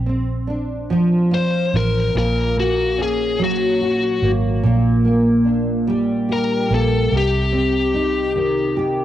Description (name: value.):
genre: six-eight pop ballad.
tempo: 48 BPM (dotted quarters).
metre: 6/8.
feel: straight.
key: Bb major.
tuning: A4 = 440 Hz.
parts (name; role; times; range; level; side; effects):
nylon-string guitar; accompaniment; 0.0-9.0 s; Bb2 to G4; -19 LUFS; right 1 dB; double-tracked left and right, cassette tape.
vintage muted fingered electric bass; bass; 0.0-9.0 s; Ab1 to C2; -21 LUFS; right 1 dB; none.
biting lead guitar; melody; 1.3-8.8 s; Gb4 to C5; -20 LUFS; left 4 dB; overdrive, cassette tape.
room: light reverb.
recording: home recording on cassette.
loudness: -16 LUFS.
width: side -12 dB against mid.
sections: 0.0-9.0 A section.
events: none.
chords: 0.0 Bbadd9; 2.1 Gb/Bb; 4.6 Gm/Bb; 7.1 Cm.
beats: 0.90 | 2.15 3.39 | 4.63 5.87 | 7.11 8.36.